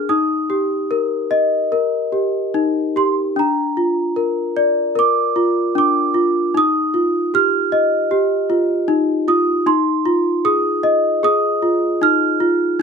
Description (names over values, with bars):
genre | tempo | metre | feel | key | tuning
children's music, lullaby | 76 BPM | 4/4 | rubato | Eb major | A4 = 441 Hz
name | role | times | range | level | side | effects
celesta | solo | 0.0-12.8 s | D4 to F6 | -15 LUFS | equal | none
room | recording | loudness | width
little or no reverb | close, detailed microphones | -15 LUFS | side -6 dB against mid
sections
0.0-3.4 A section; 3.4-12.8 B section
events
none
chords
0.1 Eb; 3.4 Bb; 6.5 Ebadd9; 9.7 Fm7